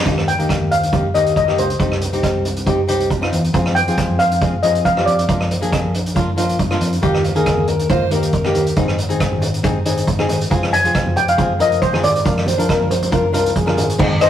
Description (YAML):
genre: calypso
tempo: 138 BPM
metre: 4/4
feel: swing 54% on 16ths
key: Eb major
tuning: A4 = 440 Hz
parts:
  - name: fingered electric bass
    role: bass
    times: 0.0-14.3 s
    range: F1 to G2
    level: -22 LUFS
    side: left 1 dB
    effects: none
  - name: flamenco guitar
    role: accompaniment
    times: 0.1-14.3 s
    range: Bb3 to Bb4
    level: -22 LUFS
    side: left 1 dB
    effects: none
  - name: street-band drum kit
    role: drums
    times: 0.1-14.3 s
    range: crash cymbal, hi-hat, kick drum, rim click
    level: -19 LUFS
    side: right 1 dB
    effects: none
  - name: steel pan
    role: melody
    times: 0.3-6.3, 10.7-14.3 s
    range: C5 to Ab5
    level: -17 LUFS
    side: left 1 dB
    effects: none
  - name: warm alto saxophone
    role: second line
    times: 7.0-9.0, 12.5-14.0 s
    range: F4 to C5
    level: -21 LUFS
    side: equal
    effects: none
  - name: congas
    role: percussion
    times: 7.6-13.9 s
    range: none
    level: -28 LUFS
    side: right 2 dB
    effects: none
room: wet stone room reverb, RT60 1.1 s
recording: rough rehearsal-room recording, warm saturation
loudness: -14 LUFS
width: side -10 dB against mid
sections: 0.1-14.0 A section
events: none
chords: 0.1 Eb; 1.8 Cm; 3.5 Fm; 5.3 Bb7; 7.0 Eb; 8.8 Ab; 10.5 Fm; 12.3 Bb7